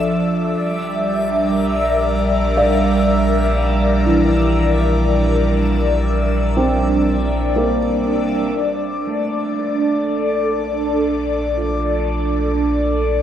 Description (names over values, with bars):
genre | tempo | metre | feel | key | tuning
ambient | 60 BPM | 4/4 | straight | Bb lydian | A4 = 440 Hz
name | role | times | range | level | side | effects
airy breathy pad | sustained chords | 0.0-13.2 s | F3 to D5 | -18 LUFS | equal | chorus, phaser
deep rumbling drone | bass | 0.0-13.2 s | Bb1 | -21 LUFS | equal | built-in reverb
backwards swelling texture | texture | 0.0-8.6 s | E5 to E6 | -25 LUFS | left 1 dB | built-in reverb
felt-muted upright piano | arpeggios | 2.6-13.2 s | E3 to F5 | -22 LUFS | right 1 dB | diffuse ambient delay
room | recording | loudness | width
wet concert hall reverb, RT60 2.2 s | dark, warm production | -15 LUFS | side -10 dB against mid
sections
0.0-8.6 A section; 8.6-13.2 B section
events
none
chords
0.0 Bbmaj7; 0.6 Gm/Bb; 8.6 Bbmaj7